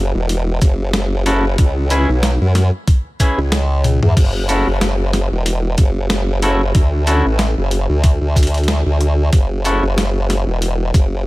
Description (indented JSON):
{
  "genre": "glitch hop",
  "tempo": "93 BPM",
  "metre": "4/4",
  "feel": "swing 56% on 16ths",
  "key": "F# minor",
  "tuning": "A4 = 440 Hz",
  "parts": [
    { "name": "formant-sweep wobble bass", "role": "bass", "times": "0.0-11.3 s", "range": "E1 to F#2", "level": "-16 LUFS", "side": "equal", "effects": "chorus" },
    { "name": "boom bap sampler-style drum kit", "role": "drums", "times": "0.3-11.1 s", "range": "crash cymbal, hi-hat, shaker, snare drum, toms", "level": "-21 LUFS", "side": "left 1 dB", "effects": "studio reverb" },
    { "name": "electronic kick drum", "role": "drums", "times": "0.6-11.1 s", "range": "none", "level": "-12 LUFS", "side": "equal", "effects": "studio reverb" },
    { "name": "semi-hollow electric guitar", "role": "stabs", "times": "1.3-9.8 s", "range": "C#4 to B4", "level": "-21 LUFS", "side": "equal", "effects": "sidechain pumping, dub echo" }
  ],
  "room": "little or no reverb",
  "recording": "none",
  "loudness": "-13 LUFS",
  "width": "side -19 dB against mid",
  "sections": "0.0-11.3 A section",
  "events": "drum fill 3.8-4.2",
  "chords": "0.0 F#7(no3); 1.6 C#m7; 4.2 F#m7; 6.7 D; 9.3 F#7(no3)"
}